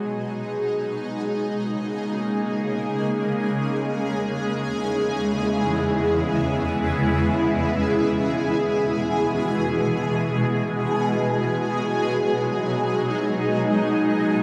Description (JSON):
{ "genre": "ambient", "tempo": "free time", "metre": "none", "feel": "none", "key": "unclear", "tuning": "A4 = 439 Hz", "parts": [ { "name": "shimmering ambient pad", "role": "sustained chords", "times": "0.0-14.4 s", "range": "E2 to G#4", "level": "-24 LUFS", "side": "equal", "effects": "chorus, built-in reverb, phaser" }, { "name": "analog drone", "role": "drone", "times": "0.0-7.3 s", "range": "G#3", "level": "-32 LUFS", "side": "equal", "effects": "chorus" } ], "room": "wet huge ambient reverb, RT60 7.4 s", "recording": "dark, warm production", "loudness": "-23 LUFS", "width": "mono", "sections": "0.0-7.2 A section; 7.2-14.4 A section", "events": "fade-in on ambient pad 0.0-7.2", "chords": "0.0 G#m7; 0.6 D#7sus4; 3.8 C#m7/E; 7.2 E; 10.5 G#m7; 13.8 D#7sus4", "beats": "free time" }